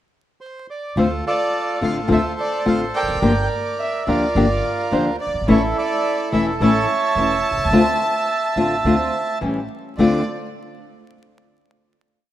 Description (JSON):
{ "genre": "tango", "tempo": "107 BPM", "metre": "4/4", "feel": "rubato", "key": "D minor", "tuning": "A4 = 440 Hz", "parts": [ { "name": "bandoneon", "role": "melody", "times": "0.4-10.2 s", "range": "E4 to D6", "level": "-21 LUFS", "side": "right 3 dB", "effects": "none" }, { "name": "warm violin", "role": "second line", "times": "1.0-10.2 s", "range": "C5 to A5", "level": "-28 LUFS", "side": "left 1 dB", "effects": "none" }, { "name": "nylon-string guitar", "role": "accompaniment", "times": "1.0-10.2 s", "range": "D3 to G4", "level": "-19 LUFS", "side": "left 2 dB", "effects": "none" }, { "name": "upright bass", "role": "bass", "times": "1.0-10.2 s", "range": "E1 to D2", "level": "-26 LUFS", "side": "equal", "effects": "none" }, { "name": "dark symphonic string section", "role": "stabs", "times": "5.5-10.2 s", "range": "A3 to G4", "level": "-29 LUFS", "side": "right 2 dB", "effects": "slapback echo" } ], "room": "moderate lush hall reverb, RT60 2.2 s", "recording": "rough home demo mix, vinyl crackle", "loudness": "-17 LUFS", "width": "side -12 dB against mid", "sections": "0.0-1.0 pickup bar; 1.0-10.0 A section; 10.0-12.2 final chord", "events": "none", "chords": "0.0 N.C.; 1.0 Dm7; 3.2 Gm7; 5.5 A; 7.7 Dm7; 9.4 A7; 10.0 Dm7" }